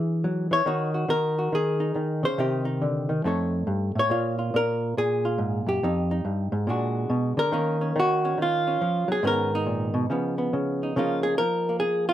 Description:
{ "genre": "solo jazz", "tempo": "140 BPM", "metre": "4/4", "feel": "swing 64% on 8ths", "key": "unclear", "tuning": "A4 = 439 Hz", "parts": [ { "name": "hollow-body jazz guitar", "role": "solo", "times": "0.0-12.1 s", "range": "F2 to C#5", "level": "-23 LUFS", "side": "equal", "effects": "none" } ], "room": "light reverb", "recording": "minimal, uncompressed stereo recording", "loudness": "-23 LUFS", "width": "side -12 dB against mid", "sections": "0.0-11.0 A section; 11.0-12.1 B section", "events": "none", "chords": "0.0 E9; 0.7 D#m7; 2.4 Cm; 3.2 F7b13; 4.1 A#m7; 5.8 Fm9; 6.7 A#7b13; 7.5 D#m9; 9.2 G#madd9; 10.1 C#9; 11.0 Db69" }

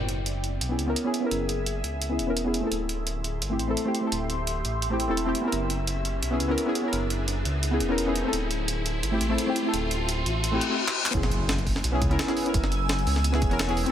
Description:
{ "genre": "liquid drum and bass", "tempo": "171 BPM", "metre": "4/4", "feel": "swing 53% on 16ths", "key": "unclear", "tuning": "A4 = 441 Hz", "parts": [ { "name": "deep mellow chord stab", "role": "accompaniment", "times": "0.0-13.9 s", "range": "A3 to A#4", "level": "-28 LUFS", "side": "equal", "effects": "analog chorus, dub echo" }, { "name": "ethereal airy pad", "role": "sustained chords", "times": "0.0-13.9 s", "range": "B3 to E6", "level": "-35 LUFS", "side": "equal", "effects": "ensemble chorus, built-in reverb, phaser, sidechain pumping" }, { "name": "dark detuned saw bass", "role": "bass", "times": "0.0-13.8 s", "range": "D1 to C#2", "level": "-29 LUFS", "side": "equal", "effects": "none" }, { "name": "riser, reverse cymbal and impact", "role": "sound effects", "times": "0.0-12.5 s", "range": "none", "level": "-34 LUFS", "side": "left 2 dB", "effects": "none" }, { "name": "breakbeat sampler-style drum kit", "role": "drums", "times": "0.1-13.9 s", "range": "handclaps, hi-hat, snare drum", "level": "-31 LUFS", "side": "right 2 dB", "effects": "none" }, { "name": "electronic kick drum", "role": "drums", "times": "11.1-13.5 s", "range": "none", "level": "-28 LUFS", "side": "equal", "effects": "none" } ], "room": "light reverb", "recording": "none", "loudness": "-24 LUFS", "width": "side -10 dB against mid", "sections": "0.0-11.1 A section; 11.1-13.9 B section", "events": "build-up 0.0-11.1; riser 0.0-10.8; filter sweep on ambient pad 0.0-11.1; reverse cymbal 10.4-11.1; drum fill 10.9; drop 11.1-13.9; impact 11.1-12.5", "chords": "0.0 F#9sus4; 2.7 D9sus4; 5.5 F#9sus4; 8.3 D9sus4; 11.1 F#9sus4" }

